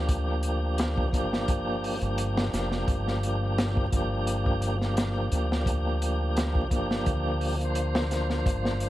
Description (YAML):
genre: trip hop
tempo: 86 BPM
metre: 4/4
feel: swing 54% on 16ths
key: G minor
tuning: A4 = 441 Hz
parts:
  - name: tonewheel organ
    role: accompaniment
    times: 0.0-8.9 s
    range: F3 to C5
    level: -29 LUFS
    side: equal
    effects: overdrive, fast rotary speaker, tremolo, vintage 12-bit sampler grit, tape echo
  - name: deep dub fingered electric bass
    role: bass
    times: 0.0-8.9 s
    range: F1 to D2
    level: -29 LUFS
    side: equal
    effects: none
  - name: crunchy breakbeat drum kit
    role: drums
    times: 0.1-8.9 s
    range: hi-hat, kick drum, snare drum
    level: -30 LUFS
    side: equal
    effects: analog delay
room: studio ambience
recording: echo-heavy mix, vinyl crackle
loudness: -25 LUFS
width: side -15 dB against mid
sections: 0.0-8.9 A section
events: none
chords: 0.0 Gm7